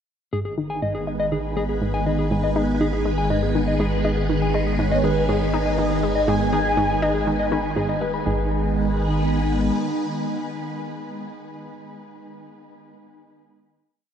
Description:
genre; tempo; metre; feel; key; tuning
ambient, sequencer-driven space music; 121 BPM; 4/4; straight; G# minor; A4 = 435 Hz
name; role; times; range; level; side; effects
phased string machine; sustained chords; 0.3-11.8 s; D#3 to B4; -25 LUFS; equal; ensemble chorus, phaser
mellow electric guitar; arpeggios; 0.3-8.5 s; G#4 to B5; -28 LUFS; left 3 dB; auto-pan, tape echo
analog pluck; riff; 0.3-8.5 s; G#2 to D#4; -27 LUFS; equal; chorus, tape echo
warm sub bass; bass; 0.3-9.7 s; G#1; -26 LUFS; equal; none
wind-like tuned noise texture; texture; 1.5-8.3 s; G#5; -39 LUFS; right 6 dB; none
mellow horn-like synth lead; melody; 4.8-7.8 s; B4 to G#5; -27 LUFS; equal; ensemble chorus, tape echo
room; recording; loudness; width
wet huge ambient reverb, RT60 8.9 s; none; -20 LUFS; side -8 dB against mid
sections
0.3-8.3 A section; 8.3-12.2 final chord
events
fade-in on synth texture 0.3-8.3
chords
0.3 G#m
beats
| 0.33 0.82 1.32 1.82 | 2.31 2.81 3.30 3.80 | 4.29 4.79 5.29 5.78 | 6.28 6.78 7.27 7.77 | 8.26 8.76 9.25 9.75 | 10.25 10.74 11.24 11.73

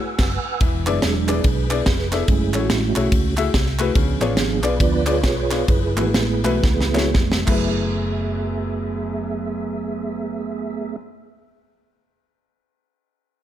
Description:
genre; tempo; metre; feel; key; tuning
uptempo gospel; 107-144 BPM; 4/4; swing 62% on 8ths; F# minor; A4 = 440 Hz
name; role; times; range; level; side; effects
mellow tonewheel organ; sustained chords; 0.0-11.0 s; E3 to E6; -24 LUFS; right 5 dB; chorus vibrato, fast rotary speaker
hollow-body short-scale fingered electric bass; bass; 0.2-11.0 s; E1 to D2; -24 LUFS; equal; none
crisp fusion drum kit; drums; 0.2-7.6 s; crash cymbal, kick drum, ride cymbal, snare drum; -21 LUFS; equal; none
clear grand piano; accompaniment; 0.6-11.0 s; F#2 to E5; -26 LUFS; left 5 dB; none
group handclap; percussion; 0.9-8.0 s; none; -32 LUFS; right 4 dB; none
room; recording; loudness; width
light reverb, small room reverb; none; -18 LUFS; side -11 dB against mid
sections
0.6-7.7 A section; 7.7-12.2 B section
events
band accent 0.0-0.6; tonewheel organ solo 0.6-7.7; slowing down 4.0-7.7; drum fill 6.6-7.7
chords
0.0 F#9sus4; 0.6 E7; 2.3 F#m9; 4.0 C#7b9; 5.7 F#m11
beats
0.19 | 0.61 1.03 1.45 1.86 | 2.28 2.70 3.12 3.54 | 3.96 4.38 4.80 5.24 | 5.69 6.15 6.64 7.15 | 7.69 8.25 8.81 9.37 | 9.92 10.48

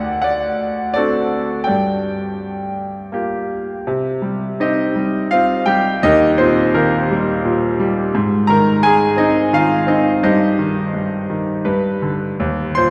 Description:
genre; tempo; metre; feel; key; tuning
classical, lyrical solo piano; 84 BPM; 3/4; rubato; G minor, C minor from 3.9 s; A4 = 440 Hz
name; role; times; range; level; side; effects
bright concert grand piano; solo; 0.0-12.9 s; D2 to C6; -17 LUFS; equal; none
room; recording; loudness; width
wet church reverb, RT60 3.5 s; recorded in a church or concert hall; -17 LUFS; mono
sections
0.0-3.9 A section; 3.9-12.9 B section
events
grand piano fill 11.3-12.4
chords
0.0 D7; 1.7 Gm7; 3.9 Cm; 6.0 Eb; 8.1 Ab; 10.2 Cm/G; 11.7 G; 12.4 Eb5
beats
0.25 0.97 | 1.68 2.39 3.13 | 3.88 4.60 5.32 | 6.04 6.74 7.44 | 8.13 8.83 9.53 | 10.22 10.93 11.65 | 12.39

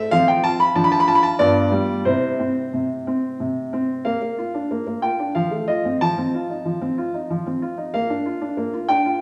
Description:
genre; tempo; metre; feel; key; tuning
classical-period piano sonatina; 93 BPM; 3/4; straight; C major, Bb major from 4.1 s; A4 = 435 Hz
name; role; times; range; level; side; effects
clear baby grand piano; solo; 0.0-9.2 s; G2 to B5; -21 LUFS; equal; none
room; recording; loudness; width
wet recital hall reverb, RT60 1.7 s; heard from further back in the room; -21 LUFS; mono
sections
0.0-4.1 A section; 4.1-9.2 B section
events
none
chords
0.1 F5; 0.8 Dm/F; 1.4 G7; 2.1 C; 4.1 Bb; 5.3 F; 7.9 Bb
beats
| 0.12 0.76 1.40 | 2.06 2.73 3.40 | 4.05 4.70 5.35 | 6.01 6.65 7.30 | 7.94 8.58

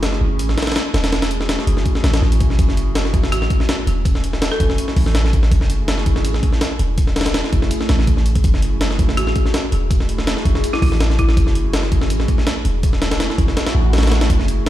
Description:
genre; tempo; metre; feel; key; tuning
drum and bass, jungle; 164 BPM; 4/4; straight; F# minor; A4 = 441 Hz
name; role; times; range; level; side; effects
warbly tape-like pad; sustained chords; 0.0-14.7 s; A3 to G#5; -25 LUFS; equal; chorus, built-in reverb
warm 808-style bass; bass; 0.0-14.7 s; E1 to B1; -18 LUFS; equal; none
breakbeat sampler-style drum kit; drums; 0.0-14.7 s; hi-hat, kick drum, snare drum; -18 LUFS; equal; small room reverb
folk marimba with hard mallets; melody; 3.3-5.0, 9.2-11.7 s; E4 to A4; -26 LUFS; equal; dub echo
swell; sound effects; 13.7-14.3 s; none; -30 LUFS; right 1 dB; none
room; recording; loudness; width
light reverb, digital ambience; played on a big sound system in a bare room, large studio reverb; -15 LUFS; side -14 dB against mid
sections
0.0-2.6 A section; 2.6-14.7 A section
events
drop 0.0-2.6, 2.6-14.7; swell 13.7-14.3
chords
0.0 F#m7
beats
0.03 0.39 0.76 | 1.13 1.49 1.86 2.22 | 2.59 2.96 3.32 3.69 | 4.05 4.42 4.78 5.15 | 5.52 5.88 6.25 6.61 | 6.98 7.34 7.71 8.08 | 8.44 8.81 9.18 9.54 | 9.91 10.27 10.64 11.00 | 11.37 11.74 12.10 12.47 | 12.83 13.20 13.56 13.93 | 14.30 14.66

